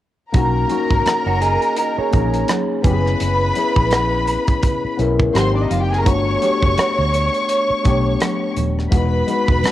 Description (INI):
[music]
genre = lush 1970s-style soul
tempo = 84 BPM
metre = 4/4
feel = swing 58% on 16ths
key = B major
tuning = A4 = 439 Hz
[part]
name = warm studio string section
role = second line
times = 0.3-9.7 s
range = D4 to C#6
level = -20 LUFS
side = equal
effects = cassette tape
[part]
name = tine electric piano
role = accompaniment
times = 0.3-9.7 s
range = G#3 to A#4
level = -22 LUFS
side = left 6 dB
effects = phaser, cassette tape
[part]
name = vintage muted fingered electric bass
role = bass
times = 0.3-9.7 s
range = D#1 to D2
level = -20 LUFS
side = right 1 dB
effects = none
[part]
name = tight funk drum kit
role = drums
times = 0.3-9.7 s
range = hi-hat, kick drum, rim click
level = -20 LUFS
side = right 1 dB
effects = cassette tape
[part]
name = congas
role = percussion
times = 0.3-9.7 s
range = none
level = -29 LUFS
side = right 8 dB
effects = none
[part]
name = electric guitar through a small old amp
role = riff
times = 1.3-2.8 s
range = C#4 to C#5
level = -24 LUFS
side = right 8 dB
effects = cassette tape
[sound]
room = moderate spring reverb, RT60 2.2 s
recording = home recording on cassette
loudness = -15 LUFS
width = side -13 dB against mid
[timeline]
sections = 0.3-9.7 A section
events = none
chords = 0.3 Bmaj9 (rootless); 2.8 F#7sus4; 5.3 G#maj9; 6.1 Gmaj9; 8.9 Emaj9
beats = | 0.34 1.06 1.77 2.49 | 3.20 3.92 4.63 5.35 | 6.06 6.78 7.49 8.21 | 8.92 9.63